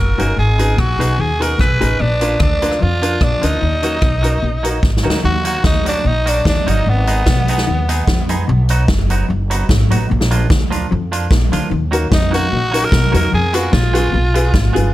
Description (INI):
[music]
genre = ska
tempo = 148 BPM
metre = 4/4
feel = straight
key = Eb harmonic minor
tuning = A4 = 443 Hz
[part]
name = raspy tenor saxophone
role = melody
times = 0.0-8.3, 12.1-14.8 s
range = Cb4 to Cb5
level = -19 LUFS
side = equal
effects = tape echo
[part]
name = semi-hollow electric guitar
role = riff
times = 0.0-14.9 s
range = F#2 to F3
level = -24 LUFS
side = left 5 dB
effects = tape echo
[part]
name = upright bass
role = bass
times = 0.0-14.9 s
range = Gb1 to F2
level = -17 LUFS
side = equal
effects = none
[part]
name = semi-hollow electric guitar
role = accompaniment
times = 0.2-14.9 s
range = F3 to Ab4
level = -24 LUFS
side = right 4 dB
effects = vibrato effect
[part]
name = dark upright piano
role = stabs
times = 0.2-5.2, 11.9-14.9 s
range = D4 to Cb5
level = -22 LUFS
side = left 1 dB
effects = none
[part]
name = swinging big-band drum kit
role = drums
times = 0.2-14.8 s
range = hi-hat, kick drum, rim click, snare drum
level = -18 LUFS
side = equal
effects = none
[sound]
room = light reverb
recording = none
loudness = -13 LUFS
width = side -15 dB against mid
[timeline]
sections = 0.0-5.2 A section; 5.2-14.9 B section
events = drum fill 4.8-5.2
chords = 0.4 Abm; 2.0 Bb; 3.6 Ebm; 6.9 Abm; 8.5 B; 10.1 Bb; 11.7 Ebm; 13.3 Fdim